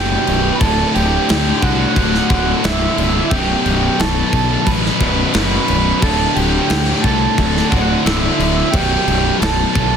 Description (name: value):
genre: heavy metal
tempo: 88 BPM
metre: 4/4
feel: straight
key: unclear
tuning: A4 = 439 Hz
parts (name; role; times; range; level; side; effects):
- mellow accordion; melody; 0.0-10.0 s; E5 to B5; -21 LUFS; right 6 dB; none
- high-gain lead guitar; second line; 0.0-10.0 s; E4 to B4; -26 LUFS; right 6 dB; distortion
- heavy high-gain guitar; riff; 0.0-10.0 s; B1 to D3; -22 LUFS; right 14 dB; distortion
- high-gain distorted guitar; riff; 0.0-10.0 s; B1 to D3; -23 LUFS; equal; distortion
- tight distorted guitar; riff; 0.0-10.0 s; B1 to D3; -21 LUFS; left 12 dB; distortion
- fuzz fingered electric bass; bass; 0.0-10.0 s; B0 to D2; -19 LUFS; equal; overdrive
- tight metal drum kit; drums; 0.3-9.9 s; crash cymbal, kick drum, snare drum; -19 LUFS; left 1 dB; soft clipping on kick
room: light reverb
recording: dense, heavily limited modern master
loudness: -13 LUFS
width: side -7 dB against mid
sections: 0.0-10.0 A section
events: none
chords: 0.0 B5; 0.6 D; 3.3 B5; 6.0 D5; 8.7 B5